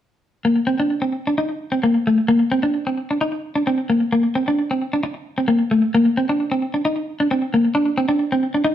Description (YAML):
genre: highlife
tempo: 131 BPM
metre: 4/4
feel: straight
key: Bb major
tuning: A4 = 438 Hz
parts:
  - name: clean electric guitar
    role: solo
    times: 0.4-8.7 s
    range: A3 to Eb4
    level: -17 LUFS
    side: equal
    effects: slapback echo
room: wet stone room reverb, RT60 1.0 s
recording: band playing live in one room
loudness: -17 LUFS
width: side -11 dB against mid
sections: 0.5-7.8 A section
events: none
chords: none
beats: | 0.45 0.91 1.37 1.82 | 2.28 2.74 3.19 3.65 | 4.11 4.57 5.02 5.48 | 5.94 6.39 6.85 7.31 | 7.76 8.22 8.68